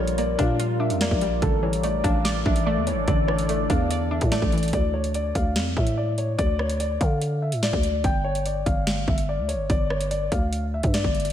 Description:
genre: hip hop, drill.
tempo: 145 BPM.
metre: 4/4.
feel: half-time.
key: D harmonic minor.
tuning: A4 = 440 Hz.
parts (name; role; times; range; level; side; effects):
dark concert grand piano; melody; 0.0-11.3 s; A4 to G5; -28 LUFS; left 2 dB; diffuse ambient delay.
warbly dusty pluck; accompaniment; 0.0-4.7 s; D3 to D5; -29 LUFS; right 2 dB; chorus.
deep dark ambient pad; sustained chords; 0.0-4.7 s; E3 to D5; -30 LUFS; equal; chorus, built-in reverb.
growling 808-style bass; bass; 0.0-11.3 s; G1 to D3; -26 LUFS; equal; none.
drill drum kit; drums; 0.1-11.3 s; hi-hat, kick drum, rim click, snare drum; -26 LUFS; equal; overdrive.
room: moderate lush hall reverb, RT60 1.9 s.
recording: dreamy mix soaked in reverb.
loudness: -21 LUFS.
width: side -10 dB against mid.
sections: 0.0-4.7 A section; 4.7-11.3 B section.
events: none.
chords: 0.0 Bb6; 1.4 Asus4; 4.7 Dm; 8.0 G5.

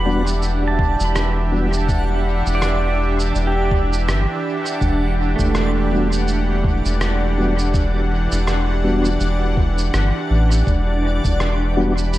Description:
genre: ambient dub.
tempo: 82 BPM.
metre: 4/4.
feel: swing 58% on 16ths.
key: E minor.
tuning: A4 = 440 Hz.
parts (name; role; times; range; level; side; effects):
warm analog pad; sustained chords; 0.0-12.2 s; E3 to B5; -24 LUFS; equal; chorus, tremolo.
pedal steel guitar; arpeggios; 0.0-9.0 s; A3 to B5; -26 LUFS; right 4 dB; tape echo.
soft dub sub bass; bass; 0.0-12.2 s; E1 to A1; -19 LUFS; equal; none.
backwards swelling texture; texture; 0.0-12.2 s; D4 to F#5; -28 LUFS; equal; built-in reverb.
tonewheel organ; stabs; 0.1-11.9 s; G3 to F#4; -24 LUFS; left 1 dB; chorus vibrato, slow rotary speaker, dub echo.
electronic cabasa and rim click; drums; 0.3-12.2 s; none; -28 LUFS; equal; dub echo.
electronic kick drum; drums; 0.8-11.4 s; none; -20 LUFS; equal; none.
room: light reverb, digital ambience.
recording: none.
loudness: -16 LUFS.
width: side -15 dB against mid.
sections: 0.0-12.2 A section.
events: none.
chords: 0.0 Em9.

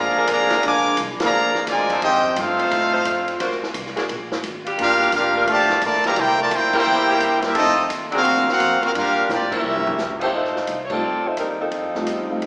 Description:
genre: jazz, big band swing.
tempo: 173 BPM.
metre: 4/4.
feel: swing 65% on 8ths.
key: F major.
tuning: A4 = 440 Hz.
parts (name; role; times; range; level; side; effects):
brilliant trumpet section; melody; 0.0-10.2 s; Bb3 to D6; -18 LUFS; equal; none.
bright trombone section; second line; 0.0-10.2 s; D3 to G4; -24 LUFS; equal; none.
upright bass; bass; 0.0-12.5 s; F1 to A2; -36 LUFS; equal; none.
clear saxophone section; sustained chords; 0.2-10.3 s; F3 to C5; -26 LUFS; equal; none.
swinging big-band drum kit; drums; 0.3-12.5 s; crash cymbal, hi-hat, kick drum, ride cymbal, snare drum, toms; -29 LUFS; equal; none.
mellow saxophone section; melody; 10.2-12.5 s; G3 to D5; -22 LUFS; equal; none.
warm concert grand piano; accompaniment; 10.9-12.4 s; G3 to F4; -26 LUFS; equal; none.
room: wet recital hall reverb, RT60 1.5 s.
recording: recorded in a church or concert hall, small speaker sound.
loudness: -17 LUFS.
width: side -32 dB against mid.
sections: 0.0-10.3 A section; 10.3-12.5 B section.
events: band accent 1.2, 6.7, 9.5, 10.9; drum fill 9.3-10.0.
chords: 0.0 Bb7; 2.0 F7; 3.4 D7alt; 4.8 Gm7; 6.2 C7; 7.6 F7; 8.3 D7alt; 8.9 Gm7; 9.6 C7b9; 10.3 F7.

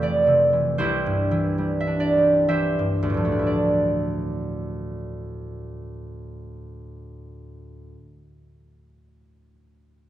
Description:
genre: classical, solo harp piece.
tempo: 57-82 BPM.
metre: 3/4.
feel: rubato.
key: D minor.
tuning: A4 = 440 Hz.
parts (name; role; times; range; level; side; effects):
concert harp; solo; 0.0-8.4 s; F1 to F5; -21 LUFS; right 1 dB; none.
room: wet recital hall reverb, RT60 1.6 s.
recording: dark, warm production, nothing above 10.8 kHz.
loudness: -20 LUFS.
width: side -12 dB against mid.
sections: 0.0-3.5 A section; 3.5-9.4 B section.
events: slowing down 0.0-3.5.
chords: 0.0 Fmaj9; 0.8 Cadd9; 3.5 Dmadd9.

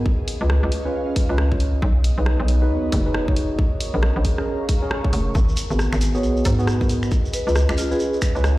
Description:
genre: UK garage, two-step garage.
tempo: 136 BPM.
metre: 4/4.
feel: swing 61% on 16ths.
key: unclear.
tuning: A4 = 440 Hz.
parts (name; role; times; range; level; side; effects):
mellow tine electric piano; stabs; 0.0-8.5 s; B3 to C#5; -26 LUFS; equal; lush chorus, tape echo.
hollow knocking FM bass; bass; 0.0-8.6 s; E#1 to G#2; -19 LUFS; equal; tube saturation.
airy breathy pad; texture; 0.0-8.6 s; B3 to C#6; -31 LUFS; right 1 dB; chorus, sidechain pumping.
electronic kick drum; drums; 0.1-8.3 s; none; -20 LUFS; equal; overdrive, small room reverb.
punchy analog drum machine; drums; 0.3-8.5 s; finger snaps, hi-hat, rim click; -30 LUFS; equal; small room reverb.
shekere; percussion; 5.3-8.6 s; none; -35 LUFS; right 2 dB; none.
vibraphone with medium mallets; melody; 6.1-8.1 s; E#4 to C#5; -27 LUFS; equal; none.
room: little or no reverb.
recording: played on a big sound system in a bare room, large studio reverb.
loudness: -18 LUFS.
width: side -18 dB against mid.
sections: 0.0-8.6 A section.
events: none.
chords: 0.1 C#7; 1.8 B6; 3.6 A#m7; 5.4 G#m7; 7.1 C#7.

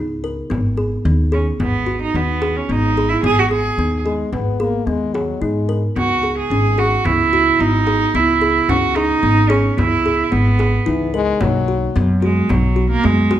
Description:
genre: contemporary instrumental, chamber music in an uneven meter.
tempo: 110 BPM.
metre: 5/4.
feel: straight.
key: C# dorian.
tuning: A4 = 442 Hz.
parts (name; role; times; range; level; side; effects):
kalimba; arpeggios; 0.0-13.4 s; A#3 to A#4; -21 LUFS; left 1 dB; none.
upright bass; bass; 0.0-13.4 s; G#1 to G#2; -19 LUFS; equal; none.
frame drum; percussion; 0.2-13.4 s; none; -26 LUFS; equal; none.
rich cello; melody; 1.3-13.4 s; F#3 to G#4; -17 LUFS; right 4 dB; none.
mellow French horn; second line; 4.1-5.8, 10.9-12.1 s; E3 to B3; -22 LUFS; left 6 dB; none.
room: moderate recital hall reverb, RT60 1.4 s.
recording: minimal, uncompressed stereo recording.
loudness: -15 LUFS.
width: side -11 dB against mid.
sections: 0.0-13.4 A section.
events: none.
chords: 0.0 C#sus2; 0.5 G#m; 6.0 C#m9; 11.4 B5.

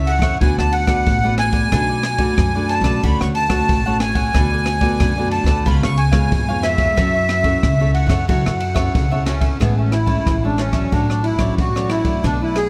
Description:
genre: samba and choro.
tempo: 91 BPM.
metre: 4/4.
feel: straight.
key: F# minor, A major from 9.6 s.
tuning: A4 = 439 Hz.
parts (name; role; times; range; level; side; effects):
accordion; melody; 0.0-12.7 s; B3 to C#6; -23 LUFS; equal; light tremolo tuning.
cavaquinho; accompaniment; 0.0-12.6 s; D4 to A5; -32 LUFS; equal; none.
nylon-string guitar; accompaniment; 0.0-12.7 s; G#2 to A4; -25 LUFS; equal; none.
upright bass; bass; 0.0-12.7 s; A1 to F#2; -23 LUFS; equal; none.
open jazz drum kit; drums; 0.1-12.7 s; kick drum, ride cymbal, rim click; -23 LUFS; equal; none.
room: light reverb.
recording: none.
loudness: -17 LUFS.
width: mono.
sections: 0.0-9.6 A section; 9.6-12.7 B section.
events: none.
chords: 0.4 D6; 1.7 Bm7; 3.0 Dmaj7; 4.3 Bm7/D; 5.7 C#7; 7.0 F#m7; 9.6 Amaj7; 10.9 Dmaj7/A.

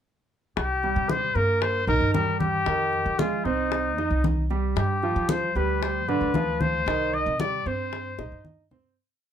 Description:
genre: latin, Cuban son and guajira.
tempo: 114 BPM.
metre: 4/4.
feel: straight.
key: C minor.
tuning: A4 = 435 Hz.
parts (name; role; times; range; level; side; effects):
warm trumpet; melody; 0.6-8.5 s; Eb4 to Eb5; -26 LUFS; left 3 dB; none.
upright bass; bass; 0.6-8.9 s; C2 to G3; -29 LUFS; equal; none.
bongos; percussion; 0.6-8.8 s; none; -33 LUFS; left 7 dB; none.
congas; percussion; 0.6-8.8 s; none; -30 LUFS; left 1 dB; none.
clear concert grand piano; arpeggios; 0.8-8.9 s; D3 to Eb5; -28 LUFS; right 6 dB; none.
room: moderate studio ambience, RT60 0.4 s.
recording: none.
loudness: -22 LUFS.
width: side -9 dB against mid.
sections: 0.6-9.0 A section.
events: fade-out 6.9-9.0; drum fill 8.2-9.0.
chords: 0.6 Cm7; 2.7 Fm7; 4.8 G7; 6.9 Cm.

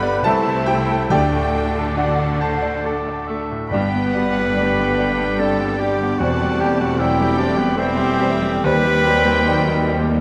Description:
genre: classical, romantic movement for piano and orchestra.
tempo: 72 BPM.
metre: 3/4.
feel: uneven beats, rubato.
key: G major.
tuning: A4 = 442 Hz.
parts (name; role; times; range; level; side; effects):
clear concert grand piano; melody; 0.0-10.2 s; C2 to B5; -24 LUFS; equal; none.
warm symphonic violin section; melody; 0.0-10.2 s; A4 to A5; -34 LUFS; equal; none.
clear clarinet; second line; 0.0-10.0 s; B3 to B4; -27 LUFS; equal; none.
flute section; second line; 0.0-10.0 s; C5 to B5; -33 LUFS; equal; none.
warm oboe; second line; 0.0-10.0 s; B4 to B5; -28 LUFS; equal; none.
warm symphonic violin section; second line; 0.0-10.2 s; C5 to B5; -35 LUFS; equal; none.
mellow bassoon; accompaniment; 0.0-10.0 s; C3 to G3; -31 LUFS; equal; none.
rich symphonic viola section; accompaniment; 0.0-10.2 s; G3 to E4; -31 LUFS; equal; none.
rich symphonic cello section; bass; 0.0-10.2 s; Eb2 to D3; -30 LUFS; equal; none.
warm studio double bass section; bass; 0.0-10.2 s; E1 to Eb2; -29 LUFS; equal; none.
mellow French horn section; sustained chords; 0.3-10.2 s; F#3 to A4; -30 LUFS; equal; none.
mellow trombone section; sustained chords; 0.3-10.2 s; D3 to D4; -31 LUFS; equal; none.
timpani; percussion; 1.1-4.9 s; G2 to D3; -31 LUFS; equal; none.
mellow trumpet; stabs; 3.7-10.0 s; G4; -30 LUFS; equal; none.
room: moderate concert hall reverb, RT60 2.1 s.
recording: close, detailed microphones.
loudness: -18 LUFS.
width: mono.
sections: 0.0-3.7 A section; 3.7-10.2 B section.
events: none.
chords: 0.3 Am/C; 1.1 D; 3.7 G; 6.2 C/E; 8.6 Cm/Eb.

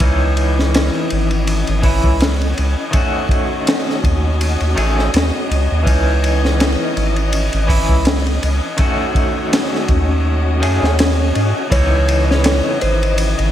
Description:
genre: trip hop.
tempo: 82 BPM.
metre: 4/4.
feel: swing 55% on 16ths.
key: C# minor.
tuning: A4 = 439 Hz.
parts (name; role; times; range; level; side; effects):
electric guitar at the edge of break-up; accompaniment; 0.0-13.5 s; D#3 to G#4; -21 LUFS; equal; tremolo, tape echo.
rich studio string section; sustained chords; 0.0-13.5 s; C#3 to D#5; -24 LUFS; left 2 dB; vintage 12-bit sampler grit.
soft dub sub bass; bass; 0.0-13.5 s; G#1 to G#2; -16 LUFS; equal; none.
crunchy breakbeat drum kit; drums; 0.0-13.5 s; hi-hat, kick drum, ride cymbal, snare drum; -18 LUFS; equal; gated reverb.
swell; sound effects; 10.7-11.7 s; none; -26 LUFS; left 1 dB; none.
clean lap steel guitar; melody; 11.7-13.2 s; B#4 to C#5; -20 LUFS; equal; tape echo.
room: moderate plate reverb, RT60 1.8 s, small room ambience.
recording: bright 1980s-style digital production.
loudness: -13 LUFS.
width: side -11 dB against mid.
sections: 0.0-11.7 A section; 11.7-13.5 B section.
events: swell 10.7-11.7.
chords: 0.0 C#madd9; 2.9 D#m7b5; 5.9 C#madd9; 8.8 D#m7b5; 11.7 C#madd9.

